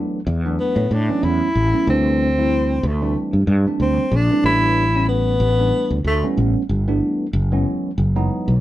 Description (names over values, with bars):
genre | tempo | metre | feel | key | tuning
electric jazz fusion | 93 BPM | 4/4 | swing 56% on 16ths | unclear | A4 = 441 Hz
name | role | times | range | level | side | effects
tine electric piano | accompaniment | 0.0-8.5 s | E3 to E4 | -22 LUFS | right 1 dB | phaser
fretless electric bass | bass | 0.3-8.6 s | F#1 to A2 | -19 LUFS | equal | none
warm tenor saxophone | melody | 0.6-6.3 s | A3 to E4 | -19 LUFS | equal | none
room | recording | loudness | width
light reverb | band playing live in one room | -16 LUFS | side -14 dB against mid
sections
0.0-8.6 A section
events
tenor saxophone solo 0.0-8.6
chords
0.0 E9sus4; 1.9 D9sus4; 4.4 A9sus4; 7.3 F#9sus4